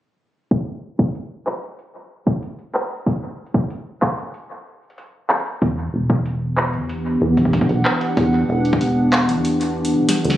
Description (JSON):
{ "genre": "IDM", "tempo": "94 BPM", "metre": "4/4", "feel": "straight", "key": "unclear", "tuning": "A4 = 440 Hz", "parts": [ { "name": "booming analog drum machine", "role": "drums", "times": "0.5-10.4 s", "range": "handclaps, hi-hat, snare drum", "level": "-23 LUFS", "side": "equal", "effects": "digital delay" }, { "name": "electronic kick drum", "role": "drums", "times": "0.5-8.9 s", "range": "none", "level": "-20 LUFS", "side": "equal", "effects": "none" }, { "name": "hollow soft pad", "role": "sustained chords", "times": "5.6-10.4 s", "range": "E3 to F#5", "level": "-19 LUFS", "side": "equal", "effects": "chorus" }, { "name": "deep acid bass", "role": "bass", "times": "5.6-10.4 s", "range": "E1 to E2", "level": "-21 LUFS", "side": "equal", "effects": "none" } ], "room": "moderate digital room reverb, RT60 1.1 s", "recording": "recorded on a phone in the room, studio reverb, compression, low-pass filter", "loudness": "-18 LUFS", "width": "side -13 dB against mid", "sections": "0.5-10.4 A section", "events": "filter sweep 0.5-10.4; drum fill 10.1", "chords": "0.5 N.C.; 5.3 Em9", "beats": "| 0.51 1.15 1.79 2.43 | 3.06 3.70 4.34 4.98 | 5.62 6.26 6.89 7.53 | 8.17 8.81 9.45 10.09" }